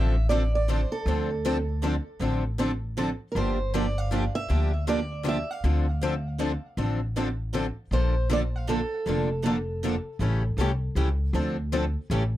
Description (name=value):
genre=acoustic string swing (jazz manouche)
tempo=158 BPM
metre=3/4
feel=swing 62% on 8ths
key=D minor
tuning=A4 = 442 Hz
part: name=picked steel-string acoustic guitar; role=melody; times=0.0-12.1 s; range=A4 to F5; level=-32 LUFS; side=right 3 dB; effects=tape echo
part: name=picked steel-string acoustic guitar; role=accompaniment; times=0.0-12.2 s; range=C#3 to A4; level=-30 LUFS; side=left 6 dB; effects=none
part: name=picked steel-string acoustic guitar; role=accompaniment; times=0.0-12.2 s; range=D3 to A4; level=-31 LUFS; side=right 6 dB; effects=none
part: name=upright bass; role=bass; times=0.0-12.4 s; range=F1 to D2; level=-26 LUFS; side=equal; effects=none
room=little or no reverb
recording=dry, close 1970s-style studio recording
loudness=-24 LUFS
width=side -14 dB against mid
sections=0.0-12.4 A section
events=none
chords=0.0 Dm7; 3.4 Gm7; 5.6 Dm7; 7.9 Bbmaj7; 10.2 A7#9; 11.3 Dm7